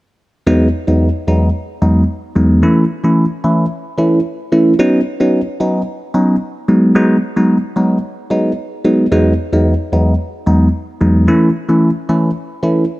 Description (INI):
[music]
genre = afrobeats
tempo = 111 BPM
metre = 4/4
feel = straight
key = unclear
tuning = A4 = 442 Hz
[part]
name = bell-like tine electric piano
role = solo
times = 0.5-12.8 s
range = E2 to E4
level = -11 LUFS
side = equal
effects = phaser
[sound]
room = light reverb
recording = none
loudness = -12 LUFS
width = side -18 dB against mid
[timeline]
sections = 0.5-9.1 A section; 9.1-13.0 B section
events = none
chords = 0.5 Emaj7; 2.6 A; 4.8 Badd9; 6.7 G#m7; 9.1 Emaj7; 11.3 A